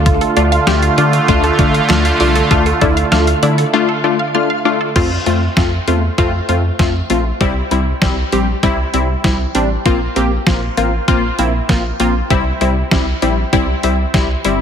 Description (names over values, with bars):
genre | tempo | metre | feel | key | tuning
synth-pop | 98 BPM | 4/4 | straight | D minor | A4 = 440 Hz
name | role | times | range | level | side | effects
funky polysynth comp | accompaniment | 0.0-14.6 s | G3 to G4 | -16 LUFS | left 3 dB | chorus
sweeping resonant pad | sustained chords | 0.0-4.9 s | D3 to F4 | -17 LUFS | right 2 dB | chorus
rubbery square bass | bass | 0.0-14.6 s | G1 to D3 | -18 LUFS | equal | none
wide unison pluck | arpeggios | 0.1-4.9 s | F4 to F6 | -21 LUFS | right 2 dB | ping-pong delay
detuned 8-bit digital drum machine | drums | 0.1-14.6 s | crash cymbal, handclaps, hi-hat, kick drum, snare drum | -18 LUFS | equal | none
room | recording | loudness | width
moderate plate reverb, RT60 1.8 s | heavily compressed radio sound, multiband compression | -12 LUFS | side -8 dB against mid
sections
0.0-5.0 A section; 5.0-14.6 B section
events
break 3.7-5.0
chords
0.0 Dm; 5.0 F; 7.4 C; 9.9 Bbsus2; 12.3 C